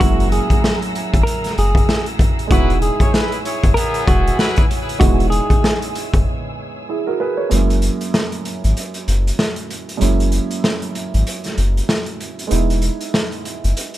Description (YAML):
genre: hip hop, boom-bap hip-hop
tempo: 96 BPM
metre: 4/4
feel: swing 61% on 16ths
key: unclear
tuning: A4 = 440 Hz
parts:
  - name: clean electric guitar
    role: melody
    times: 0.0-5.8 s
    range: F#4 to A#4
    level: -22 LUFS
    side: equal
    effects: high-pass filter, low-pass filter, tape echo
  - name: dark upright piano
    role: accompaniment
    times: 0.0-14.0 s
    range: F#2 to C#5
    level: -24 LUFS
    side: right 5 dB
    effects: high-pass filter, low-pass filter
  - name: dark studio string section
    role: sustained chords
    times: 0.0-7.5 s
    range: G#4 to E6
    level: -29 LUFS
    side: equal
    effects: high-pass filter, low-pass filter
  - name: soft dub sub bass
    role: bass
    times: 0.0-13.7 s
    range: E1 to G#1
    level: -17 LUFS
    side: equal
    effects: none
  - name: raw garage drum kit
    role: drums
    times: 0.0-14.0 s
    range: hi-hat, kick drum, snare drum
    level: -18 LUFS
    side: equal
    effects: none
  - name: clear trumpet section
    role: stabs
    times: 2.5-4.6 s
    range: B3 to C#5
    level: -26 LUFS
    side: left 1 dB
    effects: high-pass filter, low-pass filter, tape echo
room: little or no reverb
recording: none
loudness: -15 LUFS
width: side -14 dB against mid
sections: 0.0-7.5 A section; 7.5-14.0 B section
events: break 6.3-7.5, 7.5-14.0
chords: 0.0 F#9; 2.5 C#m7/E; 7.5 F#9; 12.5 Emaj7